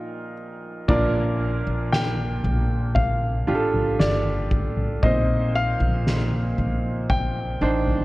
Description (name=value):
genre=pop ballad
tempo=58 BPM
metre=4/4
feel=straight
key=Bb major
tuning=A4 = 440 Hz
part: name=dark grand piano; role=melody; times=0.0-8.0 s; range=D5 to G5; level=-28 LUFS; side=left 2 dB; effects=none
part: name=clear upright piano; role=accompaniment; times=0.0-8.0 s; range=Bb1 to C5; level=-26 LUFS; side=right 2 dB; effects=none
part: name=upright bass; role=bass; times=0.9-8.0 s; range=G1 to Bb1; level=-25 LUFS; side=equal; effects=none
part: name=soft-mallet drum kit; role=drums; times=0.9-8.0 s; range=crash cymbal, kick drum, snare drum, toms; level=-25 LUFS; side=equal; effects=none
room=light reverb, small room ambience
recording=worn, warbling old tape, cassette tape, warbly pitch drift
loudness=-20 LUFS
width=side -19 dB against mid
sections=0.9-8.0 A section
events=none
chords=0.0 Ebsus2/Bb; 0.9 Bb; 5.0 Cmadd9/Bb